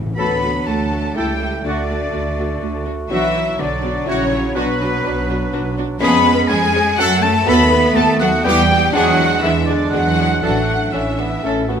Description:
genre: quick classical-period movement for symphony orchestra.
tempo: 123 BPM.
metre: 3/4.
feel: straight.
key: D major.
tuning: A4 = 440 Hz.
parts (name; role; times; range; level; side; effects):
rich studio cello section; bass; 0.0-11.7 s; A2 to B3; -22 LUFS; right 2 dB; none.
warm studio double bass section; bass; 0.0-11.8 s; A1 to F#2; -23 LUFS; right 2 dB; none.
rich studio violin section; melody; 0.2-11.7 s; B4 to B5; -24 LUFS; left 3 dB; none.
bright oboe; second line; 0.2-11.7 s; B4 to B5; -25 LUFS; right 2 dB; none.
bright silver concert flute; second line; 0.2-11.7 s; B4 to B5; -24 LUFS; left 4 dB; none.
dark clarinet; second line; 0.2-11.8 s; B3 to F#4; -27 LUFS; left 1 dB; none.
rich studio violin section; second line; 0.2-11.7 s; B3 to B4; -25 LUFS; left 3 dB; none.
rich studio viola section; accompaniment; 0.2-11.8 s; A3 to A4; -27 LUFS; right 1 dB; none.
warm bassoon; accompaniment; 0.2-11.8 s; F#3 to C#4; -25 LUFS; right 3 dB; none.
mellow French horn section; sustained chords; 0.2-11.8 s; E3 to F#4; -25 LUFS; left 4 dB; none.
warm trumpet section; stabs; 0.2-11.6 s; F#4 to A4; -24 LUFS; right 1 dB; none.
room: moderate scoring stage reverb, RT60 1.5 s.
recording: none.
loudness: -14 LUFS.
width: side -8 dB against mid.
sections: 0.2-11.8 A section.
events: none.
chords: 0.2 D; 1.2 A7/C#; 1.6 D; 3.1 Bm; 4.1 F#7/A#; 4.6 Bm; 6.0 C#7/E#; 7.0 F#m; 7.5 B7/D#; 8.5 Em; 8.9 E7; 10.4 Asus4.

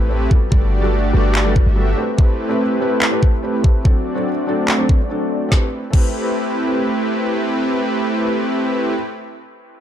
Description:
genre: future bass.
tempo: 144 BPM.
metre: 4/4.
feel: half-time.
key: A dorian.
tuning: A4 = 440 Hz.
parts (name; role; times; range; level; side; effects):
soft supersaw; riff; 0.0-8.9 s; A3 to E5; -19 LUFS; equal; sidechain pumping, low-pass filter, dub echo.
warm 808-style bass; bass; 0.0-1.9 s; G1 to A1; -17 LUFS; equal; tube saturation, sidechain pumping.
impact; sound effects; 0.1-0.5 s; none; barely audible; none; none.
felt-muted upright piano; accompaniment; 0.1-9.0 s; F#3 to B4; -25 LUFS; left 1 dB; sidechain pumping, dub echo.
electronic kick drum; drums; 0.3-6.1 s; none; -14 LUFS; equal; none.
trap drum kit; drums; 1.4-6.1 s; crash cymbal, finger snaps, handclaps, snare drum; -21 LUFS; equal; none.
room: light reverb.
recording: dark, warm production.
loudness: -15 LUFS.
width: side -10 dB against mid.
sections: 0.0-5.5 A section; 5.5-8.9 B section.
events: impact 0.0-0.5; filter sweep on supersaw synth 0.0-5.5.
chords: 0.3 Gmaj9; 2.0 Am9; 3.9 D7; 5.5 Am9.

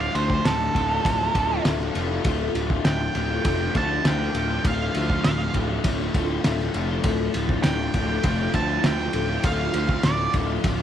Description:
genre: psychedelic rock.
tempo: 100 BPM.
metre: 4/4.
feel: straight.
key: D minor.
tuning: A4 = 440 Hz.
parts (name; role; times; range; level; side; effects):
octave-fuzz lead guitar; melody; 0.0-10.3 s; A4 to A5; -27 LUFS; right 4 dB; distortion, slapback echo.
phased string machine; sustained chords; 0.0-10.8 s; F3 to A5; -32 LUFS; right 12 dB; ensemble chorus, phaser.
crunchy overdriven guitar; riff; 0.0-10.8 s; D2 to F4; -28 LUFS; left 13 dB; flanger.
fuzz picked electric bass; bass; 0.0-10.8 s; D1 to D2; -27 LUFS; equal; overdrive.
cloth-damped thuddy drum kit; drums; 0.2-10.8 s; kick drum, ride cymbal, snare drum; -25 LUFS; equal; none.
room: light reverb, small room ambience.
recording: 1960s-style stereo with parts hard left and right.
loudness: -21 LUFS.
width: side -10 dB against mid.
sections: 0.0-10.8 A section.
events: lead electric guitar solo 0.0-10.8.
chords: 0.0 Dm.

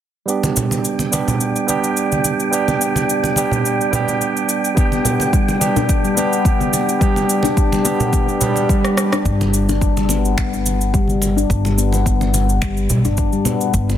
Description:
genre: organic downtempo.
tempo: 107 BPM.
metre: 4/4.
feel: swing 55% on 16ths.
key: G major.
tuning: A4 = 443 Hz.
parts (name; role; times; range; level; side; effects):
barky tine electric piano; accompaniment; 0.3-9.3 s; G3 to G4; -20 LUFS; right 4 dB; sidechain pumping, tape echo.
electronic shaker, rim click and finger snaps; drums; 0.3-14.0 s; none; -23 LUFS; equal; overdrive, soft clipping on snare.
wind-like tuned noise texture; texture; 0.8-9.3 s; G5; -26 LUFS; equal; built-in reverb.
congas; percussion; 0.4-14.0 s; none; -24 LUFS; right 3 dB; none.
handpan; arpeggios; 4.8-14.0 s; G3 to D4; -19 LUFS; left 5 dB; low-pass filter, tape echo.
electronic kick drum; drums; 4.8-13.9 s; none; -18 LUFS; equal; overdrive.
swell; sound effects; 8.4-9.3 s; none; -27 LUFS; right 5 dB; none.
upright bass; bass; 9.3-14.0 s; G1 to B1; -19 LUFS; equal; sidechain pumping.
room: light reverb, digital ambience.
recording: dense, heavily limited modern master.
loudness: -15 LUFS.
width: side -10 dB against mid.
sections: 0.3-9.3 A section; 9.3-14.0 B section.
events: swell 8.4-9.3; drum fill 8.8-9.3; filter sweep on handpan 9.3-14.0.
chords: 0.3 G.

